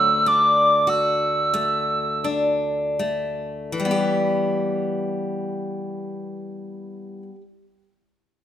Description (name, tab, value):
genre	celtic folk, Celtic slow air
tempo	38-52 BPM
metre	3/4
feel	rubato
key	E minor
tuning	A4 = 440 Hz
part	mellow wooden whistle	melody	0.0-2.3 s	D6 to E6	-18 LUFS	right 1 dB	none
part	picked steel-string acoustic guitar	accompaniment	0.0-7.4 s	D2 to G4	-23 LUFS	left 1 dB	none
room	moderate scoring stage reverb, RT60 1.4 s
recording	minimal, uncompressed stereo recording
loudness	-19 LUFS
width	side -10 dB against mid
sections	0.0-3.8 A section; 3.8-8.4 B section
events	slowing down 0.0-3.8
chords	0.0 Dadd9; 3.8 Em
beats	0.87 2.25 | 3.78 5.32 6.84